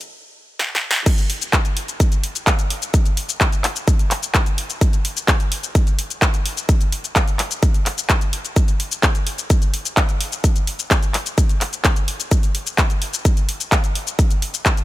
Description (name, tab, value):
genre	EDM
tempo	128 BPM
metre	4/4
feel	straight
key	none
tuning	none
part	big-room dance drum kit	drums	0.0-14.8 s	crash cymbal, handclaps, hi-hat, shaker, snare drum	-21 LUFS	left 1 dB	high-pass filter on hats, studio reverb, high-pass filter on perc, high-pass filter on snare, high-pass filter on cymbals
part	electronic kick drum	drums	1.1-14.8 s	none	-17 LUFS	equal	studio reverb
room	little or no reverb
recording	high-pass filter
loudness	-16 LUFS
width	side -16 dB against mid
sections	0.0-1.1 A section; 1.1-14.8 B section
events	build-up 0.0-1.1; drum fill 0.6-1.1; drop 1.1-14.8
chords	none